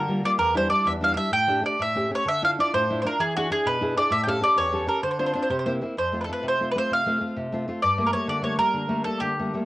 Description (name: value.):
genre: italian folk, Italian serenade.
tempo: 129 BPM (dotted quarters).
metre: 6/8.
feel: rubato.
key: D minor.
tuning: A4 = 440 Hz.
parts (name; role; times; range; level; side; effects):
bowl-back mandolin; melody; 0.0-9.5 s; F#4 to G5; -23 LUFS; equal; cassette tape.
nylon-string guitar; accompaniment; 0.0-9.7 s; E2 to A4; -27 LUFS; left 1 dB; cassette tape.
room: moderate studio reverb, RT60 0.5 s.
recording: home recording on cassette.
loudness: -21 LUFS.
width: side -17 dB against mid.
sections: 0.0-6.0 A section; 6.0-9.7 B section.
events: none.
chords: 0.4 Em7; 1.3 A7sus4; 1.8 A7; 2.3 Dmadd9; 3.2 E7; 4.1 A7; 5.0 Dm7; 5.5 C7; 6.0 F; 7.8 Gmadd9.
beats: | 0.39 0.85 | 1.32 1.79 | 2.26 2.73 | 3.20 3.66 | 4.12 4.58 | 5.04 5.50 | 5.98 6.45 | 6.91 7.36 | 7.82 8.28 | 8.74 9.22.